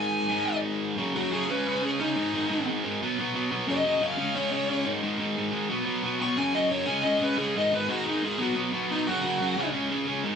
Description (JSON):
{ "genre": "punk", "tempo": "178 BPM", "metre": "4/4", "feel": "straight", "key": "unclear", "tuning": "A4 = 440 Hz", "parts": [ { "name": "bluesy overdriven lead guitar", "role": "melody", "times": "0.0-9.7 s", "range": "Eb4 to Db6", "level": "-28 LUFS", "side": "left 1 dB", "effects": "distortion" }, { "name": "distorted electric guitar", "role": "riff", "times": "0.0-10.4 s", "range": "Gb2 to Db4", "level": "-26 LUFS", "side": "equal", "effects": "distortion" } ], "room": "moderate large studio reverb, RT60 1.2 s", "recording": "band playing live in one room", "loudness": "-24 LUFS", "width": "side -7 dB against mid", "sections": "1.0-10.4 A section", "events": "half time 1.0-10.4; lead electric guitar solo 1.0-10.4", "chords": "0.0 Ab5; 1.0 Gb5; 1.5 Db5; 2.2 Ab5; 3.0 B5; 3.7 Gb5; 4.2 Db5; 4.9 Ab5; 5.7 B5; 6.4 Gb5; 6.9 Db5; 7.5 Ab5; 8.4 B5; 9.1 Gb5; 9.6 Db5" }